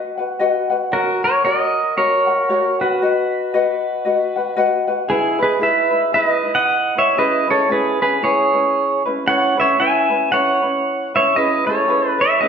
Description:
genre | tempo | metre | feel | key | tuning
hawaiian | 115 BPM | 4/4 | swing 59% on 8ths | B major, E major from 5.1 s | A4 = 441 Hz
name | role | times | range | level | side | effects
ukulele | accompaniment | 0.0-12.5 s | C#4 to F#5 | -21 LUFS | left 3 dB | none
pedal steel guitar | melody | 0.9-12.5 s | E4 to G#5 | -16 LUFS | right 1 dB | none
room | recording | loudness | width
wet large studio reverb, RT60 1.4 s | band playing live in one room | -15 LUFS | side -6 dB against mid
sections
0.0-5.1 A section; 5.1-12.5 B section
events
none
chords
0.0 B; 0.9 F#; 3.0 B; 5.1 Emaj7; 7.2 C#m7; 9.3 F#m11; 11.4 E6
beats
0.39 | 0.91 1.43 1.96 2.48 | 3.00 3.52 4.05 4.57 | 5.09 5.61 6.13 6.66 | 7.18 7.70 8.22 8.75 | 9.27 9.79 10.31 10.84 | 11.36 11.88 12.40

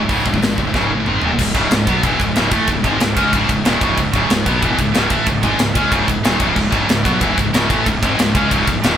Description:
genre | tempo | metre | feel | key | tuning
heavy metal | 185 BPM | 4/4 | straight | C# minor | A4 = 441 Hz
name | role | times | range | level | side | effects
heavy high-gain guitar | riff | 0.0-9.0 s | C#2 to C#4 | -19 LUFS | left 5 dB | distortion
scooped high-gain guitar | riff | 0.0-9.0 s | C#2 to C#4 | -19 LUFS | right 5 dB | distortion
fuzz fingered electric bass | bass | 0.0-9.0 s | C#1 to C#2 | -22 LUFS | equal | overdrive
tight metal drum kit | drums | 0.1-8.9 s | crash cymbal, hi-hat, kick drum, ride cymbal, snare drum, toms | -18 LUFS | equal | none
room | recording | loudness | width
moderate studio reverb, RT60 0.8 s | band playing live in one room | -13 LUFS | side -9 dB against mid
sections
0.0-1.4 A section; 1.4-9.0 B section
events
drum fill 0.7-1.4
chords
0.0 C#5; 1.1 G#5; 1.2 D#5; 1.4 C#m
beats
| 0.10 0.42 0.74 1.07 | 1.39 1.71 2.04 2.36 | 2.68 3.01 3.33 3.65 | 3.98 4.30 4.62 4.95 | 5.27 5.59 5.92 6.24 | 6.56 6.89 7.21 7.54 | 7.86 8.19 8.51 8.84

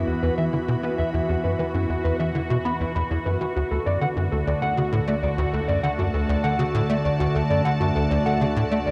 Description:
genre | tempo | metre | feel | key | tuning
ambient, sequencer-driven space music | 99 BPM | 4/4 | straight | unclear | A4 = 439 Hz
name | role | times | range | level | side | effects
evolving wavetable pad | sustained chords | 0.0-8.9 s | D3 to B5 | -28 LUFS | equal | chorus, built-in reverb
mellow electric guitar | arpeggios | 0.0-8.9 s | E4 to B5 | -29 LUFS | equal | delay
tight sequencer bass | riff | 0.0-8.9 s | D2 to B3 | -27 LUFS | equal | ensemble chorus, delay
fat analog bass | bass | 0.0-8.9 s | D2 to E2 | -36 LUFS | equal | none
room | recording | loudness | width
wet huge ambient reverb, RT60 8.6 s | none | -23 LUFS | mono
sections
0.0-8.9 A section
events
none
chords
0.0 Esus2; 3.6 D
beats
0.53 | 1.14 1.74 2.35 2.96 | 3.56 4.17 4.77 5.38 | 5.99 6.59 7.20 7.80 | 8.41

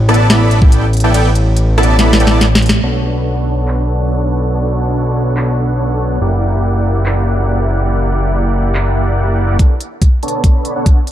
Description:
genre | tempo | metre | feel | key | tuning
future bass | 142 BPM | 4/4 | half-time | B minor | A4 = 439 Hz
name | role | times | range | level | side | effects
fat analog bass | bass | 0.0-9.6 s | F#1 to B1 | -13 LUFS | equal | sidechain pumping
dense compressed supersaw | riff | 0.1-11.0 s | A#3 to B5 | -17 LUFS | right 1 dB | sidechain pumping, low-pass filter, digital delay
trap drum kit | drums | 0.1-11.1 s | handclaps, hi-hat, ride cymbal, rim click, snare drum | -17 LUFS | equal | overdrive, low-pass filter on hats, low-pass filter on cymbals, low-pass filter on snare, low-pass filter on room
electronic kick drum | drums | 0.6-0.7, 9.6-10.9 s | none | -9 LUFS | equal | overdrive
room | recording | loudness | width
light reverb | dark, warm production | -11 LUFS | side -12 dB against mid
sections
0.0-2.8 A section; 2.8-9.6 B section; 9.6-11.1 C section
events
drop 0.0-2.8; kick drops out 2.0-2.8; drum fill 2.0-2.8; band accent 2.7; build-up 9.6-11.1; filter sweep on supersaw synth 9.6-11.1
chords
0.0 A9sus4; 2.8 Bm9; 6.2 F#7b9b13; 9.6 Bm9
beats
0.30 0.72 | 1.14 1.57 1.99 2.41 | 2.83 3.26 3.68 4.10 | 4.52 4.95 5.37 5.79 | 6.21 6.64 7.06 7.48 | 7.90 8.33 8.75 9.17 | 9.59 10.02 10.44 10.86

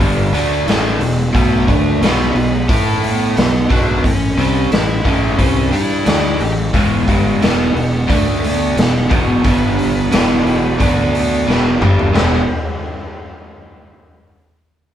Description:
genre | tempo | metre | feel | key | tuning
blues rock power trio and southern rock | 89 BPM | 4/4 | straight | unclear | A4 = 438 Hz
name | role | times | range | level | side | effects
overdriven electric guitar | riff | 0.0-12.4 s | E2 to A4 | -17 LUFS | equal | none
fuzz fingered electric bass | bass | 0.0-12.5 s | E1 to A2 | -20 LUFS | equal | overdrive
raw garage drum kit | drums | 0.0-12.3 s | china cymbal, hi-hat, kick drum, snare drum, toms | -17 LUFS | equal | none
fuzz lead guitar | melody | 1.3-12.5 s | G#3 to G4 | -20 LUFS | right 1 dB | distortion
room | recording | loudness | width
light reverb | band playing live in one room | -12 LUFS | side -10 dB against mid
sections
0.0-12.1 A section; 12.1-14.8 B section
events
drum fill 11.5-12.1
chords
0.0 E7(no3); 1.3 B5; 2.7 A5; 3.4 B5; 4.0 A7; 6.7 E7; 8.1 D5; 8.8 E5; 9.4 G5; 10.1 E5; 10.8 D5; 11.5 E5; 12.1 E7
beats
0.67 | 1.34 2.02 2.69 3.37 | 4.04 4.72 5.39 6.07 | 6.74 7.42 8.09 8.77 | 9.44 10.12 10.79 11.46 | 12.14

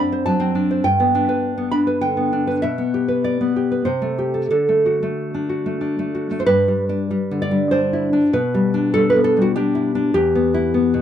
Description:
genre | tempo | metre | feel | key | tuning
romantic piece for solo classical guitar | 88-103 BPM | 3/4 | rubato | G major | A4 = 440 Hz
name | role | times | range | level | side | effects
nylon-string guitar | solo | 0.0-11.0 s | E2 to B5 | -16 LUFS | equal | none
room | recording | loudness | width
light reverb | dry, close 1970s-style studio recording | -16 LUFS | side -10 dB against mid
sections
0.0-6.5 A section; 6.5-11.0 B section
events
none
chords
0.0 D7/F#; 0.8 G; 2.6 G/B; 3.9 Am7/C; 4.5 D; 6.5 G; 8.3 G/B; 10.1 Em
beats
0.26 | 0.85 1.44 2.02 | 2.63 3.25 3.86 | 4.52 5.18 5.82 | 6.48 7.11 7.72 | 8.33 8.94 9.54 | 10.14 10.73

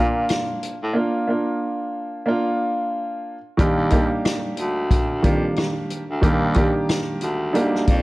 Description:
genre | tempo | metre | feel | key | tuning
hip hop, boom-bap hip-hop | 91 BPM | 4/4 | swing 62% on 16ths | unclear | A4 = 440 Hz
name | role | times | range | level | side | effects
dark grand piano | accompaniment | 0.0-8.0 s | Eb3 to G4 | -22 LUFS | right 1 dB | high-pass filter, low-pass filter
warm baritone saxophone | bass | 0.0-8.0 s | D2 to Bb2 | -24 LUFS | equal | none
vintage drum kit | drums | 0.3-8.0 s | hi-hat, kick drum, rim click, snare drum | -22 LUFS | equal | none
room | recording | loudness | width
light reverb, studio reverb | worn, warbling old tape, cassette tape, warbly pitch drift | -19 LUFS | side -20 dB against mid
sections
0.0-3.6 A section; 3.6-8.0 B section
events
none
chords
0.0 Bb; 3.6 Ebmaj7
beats
0.29 | 0.95 1.61 2.27 2.93 | 3.59 4.25 4.91 5.57 | 6.23 6.89 7.55

